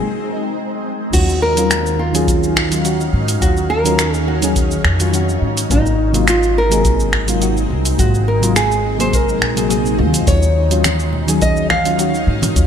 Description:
sunset chillout; 105 BPM; 4/4; swing 53% on 16ths; Eb dorian; A4 = 444 Hz
shimmering ambient pad; sustained chords; 0.0-12.7 s; Eb3 to F5; -24 LUFS; right 1 dB; chorus, built-in reverb, phaser
nylon-string guitar; melody; 1.1-12.2 s; Eb4 to F5; -20 LUFS; equal; ping-pong delay
soft electric-piano-like synth keys; accompaniment; 1.1-12.7 s; C3 to Ab4; -20 LUFS; left 2 dB; chorus, auto-pan, digital delay
upright bass; bass; 1.1-12.7 s; Ab1 to Ab2; -18 LUFS; equal
electronic kick drum; drums; 1.1-12.7 s; -19 LUFS; equal
smooth R&B drum kit; drums; 1.1-12.7 s; crash cymbal, finger snaps, hi-hat, shaker; -21 LUFS; right 1 dB
congas and bongos; percussion; 10.9-12.5 s; -24 LUFS; right 1 dB
moderate plate reverb, RT60 2.8 s; bright 1980s-style digital production; -13 LUFS; side -8 dB against mid
0.0-1.1 A section; 1.1-12.7 B section
break 0.0-1.1
0.0 Ab; 1.1 Ebm9; 5.4 Ab13; 10.3 Ebm9
0.56 | 1.13 1.70 2.27 2.85 | 3.42 3.99 4.56 5.13 | 5.70 6.27 6.84 7.42 | 7.99 8.56 9.13 9.70 | 10.27 10.85 11.42 11.99 | 12.56

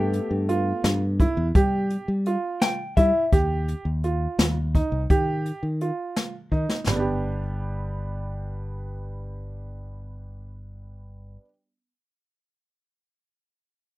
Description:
progressive instrumental, band music in an uneven meter; 169 BPM (eighths); 5/8; straight; G mixolydian; A4 = 441 Hz
vintage hollow-body jazz guitar; accompaniment; 0.0-3.3 s; A3 to G5; -26 LUFS; left 2 dB
bright concert grand piano; arpeggios; 0.0-11.5 s; G3 to G4; -28 LUFS; right 4 dB
fingered electric bass; bass; 0.0-11.4 s; G1 to G3; -26 LUFS; equal
jazz brush drum kit; drums; 0.1-7.0 s; hi-hat, kick drum, snare drum, toms; -23 LUFS; equal
little or no reverb; rough home demo mix; -22 LUFS; side -17 dB against mid
0.0-6.9 A section; 6.9-10.4 B section
hollow-body jazz guitar fill 2.3-3.3; drum fill 6.5-6.9
0.0 Gadd9; 3.3 Eb; 6.9 G
0.13 0.49 0.84 1.20 | 1.55 1.91 2.26 2.62 2.97 | 3.33 3.68 4.04 4.39 4.74 | 5.10 5.45 5.81 6.16 6.52 | 6.87 7.23 7.58 7.94 8.29 | 8.65 9.00 9.35 9.71 10.06

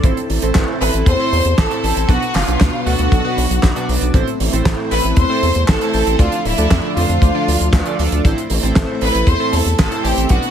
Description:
italo disco; 117 BPM; 4/4; straight; A minor; A4 = 440 Hz
string machine, full ensemble; sustained chords; 0.0-10.5 s; F3 to A4; -23 LUFS; equal; ensemble chorus
chorused polysynth; stabs; 0.0-10.4 s; A2 to D5; -22 LUFS; right 2 dB; ping-pong delay
round analog bass; bass; 0.0-10.4 s; D1 to F2; -19 LUFS; equal
damped 70s drum kit; drums; 0.0-10.5 s; handclaps, hi-hat, snare drum; -21 LUFS; right 2 dB
kick drum; drums; 0.0-10.4 s; -14 LUFS; equal
bright studio violin section; melody; 0.8-10.5 s; E4 to C6; -20 LUFS; equal; digital delay
light reverb, small room ambience; -13 LUFS; side -9 dB against mid
0.0-10.5 A section
0.0 Am; 2.1 Bm; 4.1 Am; 6.2 Dm; 8.2 Am
| 0.04 0.55 1.07 1.58 | 2.09 2.60 3.12 3.63 | 4.14 4.66 5.17 5.68 | 6.20 6.71 7.22 7.73 | 8.25 8.76 9.27 9.79 | 10.30

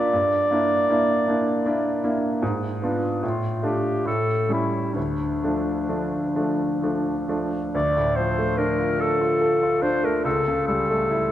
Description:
classical, romantic duo for clarinet and grand piano; 63-79 BPM; 3/4; rubato; D minor; A4 = 440 Hz
clear clarinet; melody; 0.0-11.3 s; D4 to D5; -23 LUFS; left 1 dB
bright concert grand piano; accompaniment; 0.0-11.3 s; C#2 to A4; -23 LUFS; right 1 dB
moderate scoring stage reverb, RT60 1.9 s; dark, warm production; -20 LUFS; side -12 dB against mid
0.0-7.7 A section; 7.7-11.3 B section
0.1 Em7b5/G; 2.4 G#dim7; 3.2 Dm/A; 4.1 A7; 5.0 Dm; 10.2 A7/C#
| 0.10 0.87 1.64 | 2.42 3.23 4.06 | 4.96 5.89 6.82 | 7.74 8.58 9.41 | 10.25 11.08

